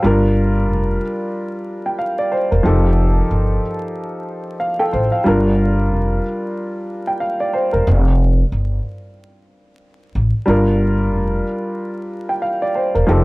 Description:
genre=hip hop, boom-bap hip-hop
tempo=92 BPM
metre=4/4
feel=swing 59% on 16ths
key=G minor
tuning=A4 = 439 Hz
part: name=dark grand piano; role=accompaniment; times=0.0-13.2 s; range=F3 to G5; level=-18 LUFS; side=equal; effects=high-pass filter, low-pass filter
part: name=upright bass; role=bass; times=0.0-13.2 s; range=E1 to A1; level=-16 LUFS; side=equal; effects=none
room=light reverb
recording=vinyl crackle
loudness=-16 LUFS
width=side -22 dB against mid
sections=0.0-13.2 A section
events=none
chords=0.0 Gm7; 2.6 F9; 5.3 Gm7; 7.9 Fsus2; 10.5 Gm7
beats=| 0.04 0.69 1.34 1.99 | 2.65 3.30 3.95 4.60 | 5.25 5.91 6.56 7.21 | 7.86 8.52 9.17 9.82 | 10.47 11.12 11.78 12.43 | 13.08

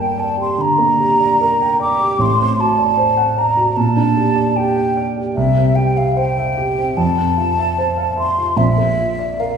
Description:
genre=classical, romantic duo for flute and grand piano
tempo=75 BPM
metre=4/4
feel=rubato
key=unclear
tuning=A4 = 440 Hz
part: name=mellow hollow concert flute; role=melody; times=0.0-9.6 s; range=E5 to D6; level=-16 LUFS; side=equal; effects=none
part: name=dark baby grand piano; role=accompaniment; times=0.0-9.6 s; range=G1 to G5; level=-17 LUFS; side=right 1 dB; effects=none
room=wet scoring stage reverb, RT60 1.7 s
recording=heard from further back in the room, small room ambience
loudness=-14 LUFS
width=side -6 dB against mid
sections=0.0-9.6 A section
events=none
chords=0.0 Gm; 2.2 D7/A; 3.8 Gm/Bb; 5.4 C; 7.0 Fmaj7; 8.6 Bb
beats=0.59 1.41 | 2.20 2.97 3.76 4.56 | 5.36 6.16 6.96 7.76 | 8.57 9.40

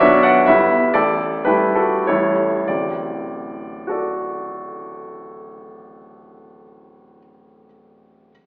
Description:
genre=classical, romantic triple-time dance for piano with dotted rhythms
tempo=93-129 BPM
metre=3/4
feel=rubato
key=D major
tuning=A4 = 440 Hz
part: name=clear baby grand piano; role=solo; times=0.0-8.3 s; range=D1 to F#5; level=-16 LUFS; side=equal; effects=none
room=wet recital hall reverb, RT60 1.5 s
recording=heard from further back in the room, AM radio sound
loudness=-15 LUFS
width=side -28 dB against mid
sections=0.0-2.7 A section; 2.7-6.2 B section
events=slowing down 0.0-2.7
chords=0.5 Em/G; 0.9 A7sus4; 2.1 A7; 2.7 D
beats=0.00 0.47 | 0.94 1.47 2.07 | 2.68 3.27 3.88 | 4.44 5.01 5.62

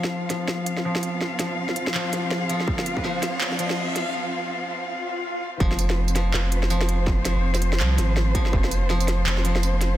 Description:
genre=half-time drum and bass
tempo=164 BPM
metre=4/4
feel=swing 59% on 16ths, half-time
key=unclear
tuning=A4 = 442 Hz
part: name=warm symphonic cello section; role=sustained chords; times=0.0-10.0 s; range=F3 to F5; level=-28 LUFS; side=left 1 dB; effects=sidechain pumping
part: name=koto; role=arpeggios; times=0.0-10.0 s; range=F3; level=-29 LUFS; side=left 2 dB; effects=low-pass filter, digital delay
part: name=saturated sub bass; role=bass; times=0.0-10.0 s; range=F1 to C2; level=-22 LUFS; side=equal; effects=high-pass filter
part: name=industrial drum kit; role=drums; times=0.0-9.9 s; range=handclaps, hi-hat, snare drum, tambourine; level=-29 LUFS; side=right 1 dB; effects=overdrive, studio reverb
part: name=riser and swell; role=sound effects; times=1.7-5.6 s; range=none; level=-36 LUFS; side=left 1 dB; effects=none
part: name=electronic kick drum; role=drums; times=2.7-3.0, 5.6-8.6 s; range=none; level=-24 LUFS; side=equal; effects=distortion, overdrive, studio reverb
room=light reverb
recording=dense, heavily limited modern master, high-pass filter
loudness=-21 LUFS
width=side -13 dB against mid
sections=0.0-5.6 A section; 5.6-10.0 B section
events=build-up 0.0-5.6; filter sweep on koto 0.0-5.6; riser 1.7-4.1; break 4.1-5.6; swell 5.0-5.6; drop 5.6-10.0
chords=0.0 F5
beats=0.12 0.48 0.85 | 1.21 1.58 1.95 2.31 | 2.68 3.04 3.41 3.77 | 4.14 4.51 4.87 5.24 | 5.60 5.97 6.34 6.70 | 7.07 7.43 7.80 8.16 | 8.53 8.90 9.26 9.63

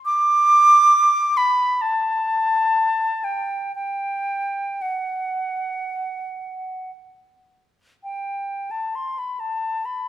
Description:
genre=classical, free, expressive piece for unaccompanied flute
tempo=47-69 BPM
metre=4/4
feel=rubato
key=G major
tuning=A4 = 445 Hz
part: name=concert flute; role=solo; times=0.1-10.1 s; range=F#5 to D6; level=-18 LUFS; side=right 1 dB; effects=none
room=wet recital hall reverb, RT60 1.4 s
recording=minimal, uncompressed stereo recording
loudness=-18 LUFS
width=side -13 dB against mid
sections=0.0-8.0 A section; 8.0-10.1 B section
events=none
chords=none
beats=| 0.04 0.92 1.81 2.73 | 3.74 4.79 5.85 6.89 | 8.02 8.94 9.84

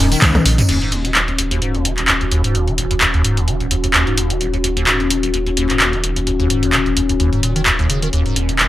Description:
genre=acid house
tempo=129 BPM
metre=4/4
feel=swing 55% on 16ths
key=Eb minor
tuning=A4 = 438 Hz
part: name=warbly tape-like pad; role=sustained chords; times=0.0-8.7 s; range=Eb3 to Bb4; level=-21 LUFS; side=left 4 dB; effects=chorus, built-in reverb, phaser, sidechain pumping
part: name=liquid acid bass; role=riff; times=0.0-8.7 s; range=Eb1 to Eb3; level=-20 LUFS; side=equal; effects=phaser, lush chorus, analog delay
part: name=warm sub bass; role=bass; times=0.0-8.7 s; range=Eb1 to Db2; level=-22 LUFS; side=equal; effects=sidechain pumping
part: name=punchy analog drum machine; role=drums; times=0.1-8.7 s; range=crash cymbal, handclaps, hi-hat, rim click, toms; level=-16 LUFS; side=equal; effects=none
part: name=tambourine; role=percussion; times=0.1-0.7 s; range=none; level=-27 LUFS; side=left 1 dB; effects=none
part: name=tight funk drum kit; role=drums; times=0.2-0.6 s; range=hi-hat, snare drum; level=-31 LUFS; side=left 2 dB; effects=none
room=light reverb, digital ambience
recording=dry, gritty hardware recording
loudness=-14 LUFS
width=side -14 dB against mid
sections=0.7-8.7 A section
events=drum fill 0.2-0.7; band accent 0.2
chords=0.0 Ebm7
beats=0.22 | 0.69 1.15 1.62 2.08 | 2.55 3.01 3.48 3.94 | 4.41 4.87 5.34 5.80 | 6.27 6.73 7.20 7.66 | 8.13 8.59

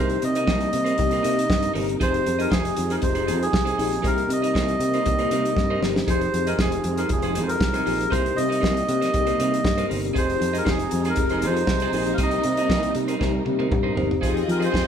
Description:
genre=disco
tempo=118 BPM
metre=4/4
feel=straight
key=F minor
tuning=A4 = 440 Hz
part: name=melodica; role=melody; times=0.0-14.9 s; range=Ab4 to F5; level=-26 LUFS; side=right 1 dB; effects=none
part: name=electric guitar at the edge of break-up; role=accompaniment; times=0.0-14.9 s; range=Eb4 to Eb5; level=-32 LUFS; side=right 4 dB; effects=none
part: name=mellow tine electric piano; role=accompaniment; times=0.0-14.9 s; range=C3 to C5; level=-27 LUFS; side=left 5 dB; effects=medium stereo tremolo
part: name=dark studio string section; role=sustained chords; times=0.0-14.9 s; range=C3 to F4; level=-30 LUFS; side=right 2 dB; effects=none
part: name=fingered electric bass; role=bass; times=0.0-14.8 s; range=F1 to F3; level=-27 LUFS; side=equal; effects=none
part: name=warm soul drum kit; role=drums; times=0.1-14.9 s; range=hi-hat, kick drum, snare drum, toms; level=-26 LUFS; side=equal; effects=none
part: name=bright studio string section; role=second line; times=14.2-14.9 s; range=C4 to Eb5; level=-32 LUFS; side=left 2 dB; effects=none
room=moderate large studio reverb, RT60 1.0 s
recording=band playing live in one room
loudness=-20 LUFS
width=side -8 dB against mid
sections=0.0-14.2 A section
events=drum fill 5.6-6.1, 13.2-14.2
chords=0.0 Cm7; 2.0 Fm7; 4.0 Cm7; 6.1 Fm7; 8.1 Cm7; 10.2 Fm7; 12.2 Cm7; 14.2 Fm7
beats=0.48 0.99 1.50 | 2.01 2.52 3.02 3.54 | 4.04 4.55 5.06 5.57 | 6.08 6.59 7.10 7.61 | 8.12 8.63 9.14 9.65 | 10.16 10.67 11.18 11.68 | 12.19 12.70 13.21 13.72 | 14.23 14.74

